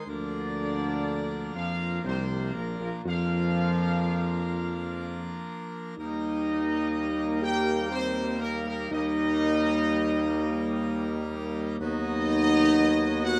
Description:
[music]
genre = classical, ceremonial fanfare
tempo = 62 BPM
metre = 3/4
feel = straight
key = unclear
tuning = A4 = 437 Hz
[part]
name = dark French horn section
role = sustained chords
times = 0.0-13.4 s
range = Bb3 to G4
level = -32 LUFS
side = equal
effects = none
[part]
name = pipe organ, full organ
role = sustained chords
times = 0.0-13.4 s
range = F3 to Bb4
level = -38 LUFS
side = equal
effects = none
[part]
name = clear trumpet section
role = melody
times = 0.1-13.4 s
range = Bb4 to G5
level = -36 LUFS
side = equal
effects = none
[part]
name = bright trombone section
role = sustained chords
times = 0.1-13.4 s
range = Bb2 to B3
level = -38 LUFS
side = equal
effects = none
[part]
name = warm tuba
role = bass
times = 0.1-13.4 s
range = Bb1 to F2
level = -33 LUFS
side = equal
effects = none
[sound]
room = moderate studio reverb, RT60 0.6 s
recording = none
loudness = -28 LUFS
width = mono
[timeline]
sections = 0.1-13.4 A section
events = none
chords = 0.1 Bb; 6.0 Eb; 11.8 B/D#

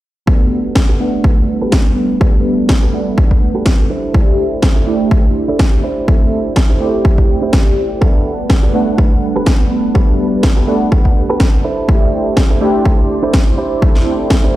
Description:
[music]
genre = filtered disco house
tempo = 124 BPM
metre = 4/4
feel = swing 55% on 16ths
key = G major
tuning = A4 = 440 Hz
[part]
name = funky polysynth comp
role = accompaniment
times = 0.3-14.6 s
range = G3 to F#5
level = -17 LUFS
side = right 1 dB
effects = chorus, phaser, cassette tape, sidechain pumping, low-pass filter
[part]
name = phased string machine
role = sustained chords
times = 0.5-14.6 s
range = G3 to A5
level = -24 LUFS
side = right 1 dB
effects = ensemble chorus, phaser, sidechain pumping, low-pass filter
[part]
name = direct-recorded clean electric guitar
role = riff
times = 0.3-14.6 s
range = D4 to D5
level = -21 LUFS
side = right 3 dB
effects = sidechain pumping, low-pass filter
[part]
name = electronic kick drum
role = drums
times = 0.3-14.4 s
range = none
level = -12 LUFS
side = equal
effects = overdrive
[part]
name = electronic snare drum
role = drums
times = 0.8-14.4 s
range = none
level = -19 LUFS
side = equal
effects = overdrive
[sound]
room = light reverb, digital ambience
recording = played on a big sound system in a bare room, large studio reverb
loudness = -11 LUFS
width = side -15 dB against mid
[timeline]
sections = 0.3-14.6 A section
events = filter sweep 0.3-14.6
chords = 0.3 Gmaj9; 3.9 C69; 8.0 Gmaj9; 11.6 C69

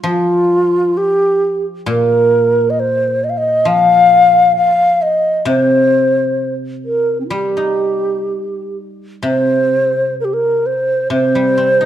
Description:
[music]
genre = chinese traditional, Chinese chamber ensemble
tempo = 62-68 BPM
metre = 4/4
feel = rubato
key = C yu mode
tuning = A4 = 441 Hz
[part]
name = guzheng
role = accompaniment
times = 0.0-11.9 s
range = Bb2 to Eb4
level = -20 LUFS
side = equal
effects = none
[part]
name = hollow low xiao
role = melody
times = 0.1-11.9 s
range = C4 to F5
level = -12 LUFS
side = equal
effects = none
[sound]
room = moderate recital hall reverb, RT60 1.6 s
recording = dark, warm production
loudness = -12 LUFS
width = side -11 dB against mid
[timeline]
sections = 0.0-11.9 A section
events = none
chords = none

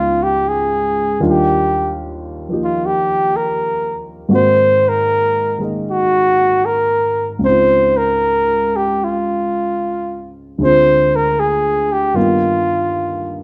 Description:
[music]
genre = jazz ballad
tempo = 77 BPM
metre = 4/4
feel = swing 67% on 8ths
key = unclear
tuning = A4 = 439 Hz
[part]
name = mellow flugelhorn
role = melody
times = 0.0-13.4 s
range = F4 to C5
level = -17 LUFS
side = equal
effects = plate reverb
[part]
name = dark baby grand piano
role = accompaniment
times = 0.0-13.4 s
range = Db2 to G4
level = -22 LUFS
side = equal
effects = none
[sound]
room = moderate studio reverb, RT60 0.7 s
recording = none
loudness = -16 LUFS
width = mono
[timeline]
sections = 0.0-13.4 A section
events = none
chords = 0.0 Db9; 1.2 Ebmaj9; 4.3 Ab9; 7.4 Dbmaj9; 10.6 Dm7b5; 12.2 G7alt

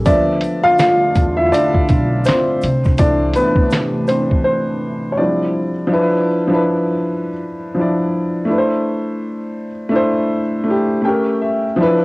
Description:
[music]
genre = lo-fi hip hop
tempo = 82 BPM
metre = 4/4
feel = swing 58% on 16ths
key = D dorian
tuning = A4 = 442 Hz
[part]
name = warm upright piano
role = accompaniment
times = 0.0-12.0 s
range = E3 to G5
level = -15 LUFS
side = equal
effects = cassette tape
[part]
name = dark analog pad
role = sustained chords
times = 0.0-5.9 s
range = C3 to F4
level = -24 LUFS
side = equal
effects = chorus, cassette tape
[part]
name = upright bass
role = bass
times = 0.0-3.3 s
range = B1 to E2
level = -20 LUFS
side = equal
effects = none
[part]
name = lo-fi sampler-style drum kit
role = drums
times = 0.1-4.4 s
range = finger snaps, hi-hat, kick drum, snare drum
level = -16 LUFS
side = equal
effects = cassette tape
[part]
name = tube shaker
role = percussion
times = 0.1-4.3 s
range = none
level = -45 LUFS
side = right 2 dB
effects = none
[sound]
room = moderate studio reverb, RT60 0.6 s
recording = home recording on cassette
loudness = -14 LUFS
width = side -24 dB against mid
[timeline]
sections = 0.0-5.9 A section; 5.9-12.0 B section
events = upright piano solo 0.0-5.9; break 4.5-5.9; upright piano fill 10.7-11.8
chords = 0.1 Dm69; 2.6 C69; 5.2 Dm11; 5.9 Dm69; 8.5 C69; 11.0 A7b9

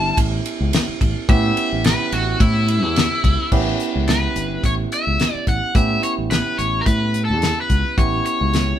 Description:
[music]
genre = straight-eighth soul blues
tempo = 108 BPM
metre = 4/4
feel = swing 56% on 16ths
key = A mixolydian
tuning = A4 = 437 Hz
[part]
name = cranked stack guitar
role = melody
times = 0.0-8.8 s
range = E4 to A5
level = -22 LUFS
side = left 2 dB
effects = overdrive
[part]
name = barky tine electric piano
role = accompaniment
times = 0.0-8.8 s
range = B3 to G4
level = -25 LUFS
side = right 6 dB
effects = overdrive
[part]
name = fingered electric bass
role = bass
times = 0.0-8.7 s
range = G1 to A2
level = -21 LUFS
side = equal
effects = none
[part]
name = damped 70s drum kit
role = drums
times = 0.2-8.7 s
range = crash cymbal, hi-hat, kick drum, ride cymbal, snare drum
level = -20 LUFS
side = left 1 dB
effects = none
[sound]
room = moderate studio reverb, RT60 0.7 s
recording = band playing live in one room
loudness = -16 LUFS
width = side -10 dB against mid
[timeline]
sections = 0.0-3.5 A section; 3.5-8.8 B section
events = overdriven electric guitar solo 0.0-3.5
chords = 0.0 A9

